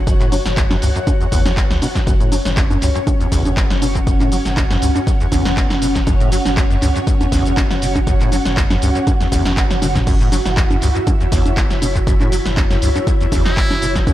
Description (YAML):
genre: acid house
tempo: 120 BPM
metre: 4/4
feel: swing 54% on 16ths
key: unclear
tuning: A4 = 440 Hz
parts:
  - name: string machine, full ensemble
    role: sustained chords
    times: 0.0-14.1 s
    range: C#4 to F#5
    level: -24 LUFS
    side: left 1 dB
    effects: ensemble chorus, sidechain pumping
  - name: ethereal airy pad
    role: texture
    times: 0.0-14.1 s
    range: F#4 to F#5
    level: -25 LUFS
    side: right 2 dB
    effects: ensemble chorus, built-in reverb, sidechain pumping
  - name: deep acid bass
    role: riff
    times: 0.1-14.1 s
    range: E2 to F#3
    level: -22 LUFS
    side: equal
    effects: ensemble chorus, sidechain pumping, analog delay
  - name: warm sub bass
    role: bass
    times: 0.1-14.1 s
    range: F#1 to C#2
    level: -21 LUFS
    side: equal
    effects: tube saturation, sidechain pumping
  - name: electronic kick drum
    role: drums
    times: 0.1-14.1 s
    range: none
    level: -17 LUFS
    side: equal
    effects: none
  - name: punchy analog drum machine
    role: drums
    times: 0.1-14.1 s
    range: congas, crash cymbal, handclaps, hi-hat, shaker, snare drum, toms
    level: -22 LUFS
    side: equal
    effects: tape echo
  - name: trumpet with metal mute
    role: melody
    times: 13.5-14.0 s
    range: E4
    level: -21 LUFS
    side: equal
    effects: analog delay
room: light reverb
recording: echo-heavy mix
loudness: -14 LUFS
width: side -14 dB against mid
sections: 0.0-14.1 A section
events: drum fill 9.8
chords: 0.0 F#7(no3)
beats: | 0.07 0.57 1.07 1.57 | 2.07 2.57 3.07 3.57 | 4.07 4.57 5.07 5.57 | 6.07 6.57 7.07 7.57 | 8.07 8.57 9.07 9.57 | 10.07 10.57 11.07 11.57 | 12.07 12.57 13.07 13.57 | 14.07